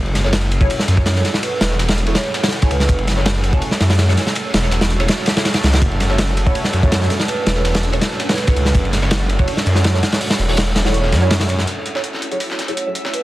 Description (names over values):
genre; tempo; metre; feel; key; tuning
drum and bass, jungle; 164 BPM; 4/4; straight; F# minor; A4 = 439 Hz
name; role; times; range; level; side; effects
soft string machine; sustained chords; 0.0-13.2 s; A3 to F#4; -28 LUFS; equal; phaser, ensemble chorus
detuned saw bass; bass; 0.0-11.7 s; E1 to F#2; -17 LUFS; equal; none
drifting glass-harmonics texture; texture; 0.5-13.2 s; A4 to E5; -31 LUFS; right 6 dB; chorus, built-in reverb
crunchy breakbeat drum kit; drums; 0.1-11.7 s; hi-hat, kick drum, ride cymbal, snare drum; -18 LUFS; equal; none
filtered dub chord stab; stabs; 0.2-13.2 s; F#3 to C#5; -26 LUFS; right 1 dB; phaser, analog chorus, dub echo
dusty soul sampler-style drum kit; drums; 0.2-13.2 s; hi-hat, snare drum; -27 LUFS; left 1 dB; high-pass filter on hats, high-pass filter on snare, high-pass filter on room
vibraphone with soft mallets; melody; 1.0-3.0, 6.8-8.8, 12.7-13.2 s; B4 to C#5; -26 LUFS; right 4 dB; dub echo
room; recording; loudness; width
light reverb; dense, heavily limited modern master, vinyl crackle; -14 LUFS; side -16 dB against mid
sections
0.0-11.7 A section; 11.7-13.2 B section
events
drop 0.0-11.7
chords
0.0 F#m7; 5.8 Dmaj7; 11.7 F#m7